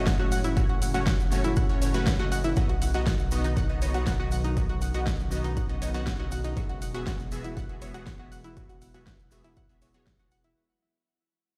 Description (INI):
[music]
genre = progressive house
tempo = 120 BPM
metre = 4/4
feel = straight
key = unclear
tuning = A4 = 440 Hz
[part]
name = airy breathy pad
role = sustained chords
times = 0.0-10.5 s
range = A2 to F#4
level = -38 LUFS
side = equal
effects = chorus, sidechain pumping
[part]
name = unison pluck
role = stabs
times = 0.0-10.5 s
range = A3 to F#5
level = -38 LUFS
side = equal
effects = phaser, sidechain pumping, delay
[part]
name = round analog bass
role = bass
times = 0.0-10.5 s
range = E1 to B1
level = -34 LUFS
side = equal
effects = sidechain pumping
[part]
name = analog pluck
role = arpeggios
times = 0.1-10.5 s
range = D#4 to F#5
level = -36 LUFS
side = equal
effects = chorus, vintage 12-bit sampler grit, sidechain pumping, delay
[part]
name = deep house drum kit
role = drums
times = 0.1-10.5 s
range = hi-hat, snare drum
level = -38 LUFS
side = equal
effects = none
[part]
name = electronic kick drum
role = drums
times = 0.1-10.2 s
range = none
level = -31 LUFS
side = equal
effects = none
[part]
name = tube shaker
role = percussion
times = 0.1-10.5 s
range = none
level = -48 LUFS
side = equal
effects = none
[sound]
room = little or no reverb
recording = played on a big sound system in a bare room, stone room reverb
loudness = -27 LUFS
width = mono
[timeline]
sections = 0.0-10.6 A section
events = drop 0.0-10.6; fade-out 2.6-10.6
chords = 0.0 F#m; 2.6 B; 6.6 Eadd9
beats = 0.07 | 0.57 1.07 1.57 2.07 | 2.57 3.07 3.57 4.07 | 4.57 5.07 5.57 6.07 | 6.57 7.07 7.57 8.07 | 8.57 9.07 9.57 10.07